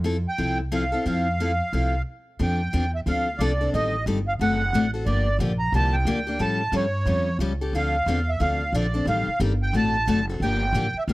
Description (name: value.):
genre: acoustic string swing (jazz manouche).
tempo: 180 BPM.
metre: 4/4.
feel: swing 61% on 8ths.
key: F major.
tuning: A4 = 438 Hz.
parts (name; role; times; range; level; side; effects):
picked steel-string acoustic guitar; accompaniment; 0.0-11.1 s; D3 to A4; -26 LUFS; left 3 dB; none.
upright bass; bass; 0.0-11.1 s; F#1 to A2; -25 LUFS; equal; none.
accordion; melody; 0.3-11.1 s; C#5 to Bb5; -26 LUFS; right 2 dB; light tremolo tuning.
room: studio ambience.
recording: dry, close 1970s-style studio recording.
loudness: -21 LUFS.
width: side -19 dB against mid.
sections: 0.0-2.4 A section; 2.4-11.1 B section.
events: stop 2.1-2.4.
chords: 0.0 Fmaj7; 2.4 F69; 3.7 Am7b5; 4.4 D7; 5.1 Gm7; 6.4 Aaug7; 7.7 Dm9; 9.1 Am7b5; 9.7 D7; 10.4 Gm9.